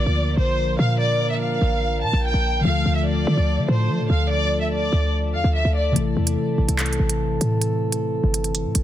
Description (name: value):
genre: hip hop, drill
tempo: 145 BPM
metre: 4/4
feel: half-time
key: D minor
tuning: A4 = 440 Hz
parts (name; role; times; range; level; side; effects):
- dark studio violin section; melody; 0.0-5.9 s; C5 to A5; -25 LUFS; equal; tape echo
- muted felt-like synth keys; accompaniment; 0.0-8.8 s; C3 to Bb4; -26 LUFS; left 3 dB; chorus
- dark French horn section; sustained chords; 0.0-8.8 s; E3 to Bb4; -29 LUFS; right 3 dB; none
- short 808-style bass; bass; 0.0-8.8 s; G1 to F3; -21 LUFS; equal; none
- drill drum kit; drums; 6.0-8.8 s; handclaps, hi-hat; -25 LUFS; right 3 dB; none
room: digital ambience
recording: dense, heavily limited modern master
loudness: -19 LUFS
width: side -12 dB against mid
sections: 0.0-8.8 A section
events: none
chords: 0.0 Bb; 2.6 Dm; 6.0 Am